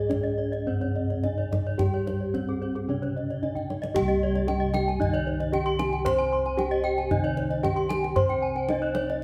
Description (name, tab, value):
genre	Balinese gamelan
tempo	113 BPM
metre	4/4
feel	uneven beats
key	C pelog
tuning	A4 = 443 Hz
part	gamelan-type bronze metallophone	melody	0.0-9.2 s	C4 to C5	-32 LUFS	equal	none
part	gamelan-type bronze metallophone	accompaniment	0.0-9.2 s	C3 to C4	-37 LUFS	equal	none
part	gamelan-type bronze metallophone	arpeggios	0.0-9.2 s	C5 to C6	-35 LUFS	equal	none
part	gamelan-type bossed gongs	bass	0.0-9.2 s	C2 to C5	-31 LUFS	equal	none
part	kendang	percussion	0.1-9.2 s	none	-35 LUFS	equal	none
part	gamelan-type bronze metallophone	arpeggios	0.2-9.1 s	Ab4-20c to C6	-36 LUFS	equal	none
room	wet stone room reverb, RT60 1.5 s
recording	band playing live in one room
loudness	-26 LUFS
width	mono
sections	0.0-4.0 A section; 4.0-9.2 B section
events	drum fill 3.4-4.0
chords	none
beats	0.09 0.67 1.24 | 1.80 2.35 2.89 3.43 | 3.96 4.48 5.00 5.53 | 6.06 6.58 7.11 7.63 | 8.16 8.69 9.22